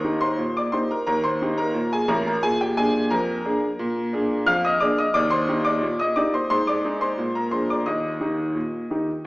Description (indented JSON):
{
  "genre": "ragtime piano",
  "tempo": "88 BPM",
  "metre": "2/4",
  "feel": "straight",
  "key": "Eb major",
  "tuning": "A4 = 444 Hz",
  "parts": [
    { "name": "clear upright piano", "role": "solo", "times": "0.0-9.3 s", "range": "A1 to F6", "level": "-20 LUFS", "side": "equal", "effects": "none" }
  ],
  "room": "wet recital hall reverb, RT60 1.5 s",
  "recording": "recorded in a church or concert hall, small speaker sound",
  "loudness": "-20 LUFS",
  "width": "side -21 dB against mid",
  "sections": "0.0-9.3 A section",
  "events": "none",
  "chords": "0.0 Eb; 2.4 Bb7; 5.1 Eb; 6.5 Ab; 7.2 Bb7; 7.9 Eb"
}